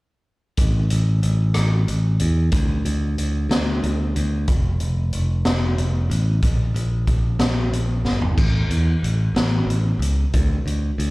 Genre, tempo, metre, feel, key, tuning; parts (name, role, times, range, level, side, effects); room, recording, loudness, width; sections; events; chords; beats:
quiet-loud alternative rock; 62 BPM (dotted quarters); 6/8; straight; A4 = 435 Hz
modern bright picked electric bass; bass; 0.6-11.1 s; F1 to E2; -19 LUFS; equal
raw garage drum kit; drums; 0.6-11.1 s; crash cymbal, hi-hat, kick drum, rim click, snare drum, toms; -23 LUFS; equal
little or no reverb; live gig heard through the venue's PA, club ambience; -18 LUFS; side -21 dB against mid
0.6-8.4 A section; 8.4-11.1 B section
drum fill 8.1-8.4
| 0.59 1.56 | 2.54 3.51 | 4.49 5.46 | 6.44 7.41 | 8.39 9.37 | 10.34